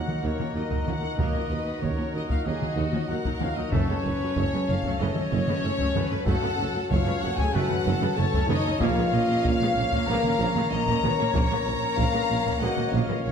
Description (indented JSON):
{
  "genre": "cinematic, epic orchestral film score",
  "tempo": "94 BPM",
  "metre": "4/4",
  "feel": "straight",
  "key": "Eb minor",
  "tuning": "A4 = 440 Hz",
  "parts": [
    { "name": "warm symphonic violin section", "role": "melody", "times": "0.0-13.3 s", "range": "Gb4 to Gb5", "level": "-33 LUFS", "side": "left 4 dB", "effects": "none" },
    { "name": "rich symphonic violin section", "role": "second line", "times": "0.0-13.3 s", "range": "Bb4 to Bb5", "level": "-35 LUFS", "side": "left 3 dB", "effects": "none" },
    { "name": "bright trombone section", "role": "sustained chords", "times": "0.0-12.8 s", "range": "Db3 to Bb3", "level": "-38 LUFS", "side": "right 3 dB", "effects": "none" },
    { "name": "chamber organ, flutes", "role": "sustained chords", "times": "0.0-13.3 s", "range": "Gb3 to Bb5", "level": "-34 LUFS", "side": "equal", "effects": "none" },
    { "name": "mellow French horn section", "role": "sustained chords", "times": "0.0-13.3 s", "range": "Bb3 to Bb4", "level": "-32 LUFS", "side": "left 4 dB", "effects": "none" },
    { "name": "mellow trumpet section", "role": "stabs", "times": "0.0-13.3 s", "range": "Bb4 to Bb5", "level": "-32 LUFS", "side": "left 1 dB", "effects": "none" },
    { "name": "warm studio viola section", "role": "accompaniment", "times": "0.1-13.3 s", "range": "Eb3 to Eb4", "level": "-35 LUFS", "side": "right 2 dB", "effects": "none" },
    { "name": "warm symphonic cello section", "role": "bass", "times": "0.1-13.3 s", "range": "Eb2 to Bb2", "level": "-33 LUFS", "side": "right 3 dB", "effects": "none" },
    { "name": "taiko ensemble", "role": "drums", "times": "0.1-13.3 s", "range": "none", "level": "-30 LUFS", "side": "left 1 dB", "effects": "none" },
    { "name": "mellow tuba", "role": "bass", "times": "0.2-13.3 s", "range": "Gb1 to Eb2", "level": "-33 LUFS", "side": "right 4 dB", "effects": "none" },
    { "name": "warm symphonic double bass section", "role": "bass", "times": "0.2-13.3 s", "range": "Gb1 to Eb2", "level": "-32 LUFS", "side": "right 3 dB", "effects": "none" },
    { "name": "timpani", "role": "percussion", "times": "8.8-9.7 s", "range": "Bb2", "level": "-33 LUFS", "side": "equal", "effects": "none" }
  ],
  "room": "wet recital hall reverb, RT60 1.6 s",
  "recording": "dark, warm production",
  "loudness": "-23 LUFS",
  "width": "side -7 dB against mid",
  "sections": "0.0-13.3 A section",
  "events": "none",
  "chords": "0.0 Ebm; 3.7 Gbm; 8.8 Bbm"
}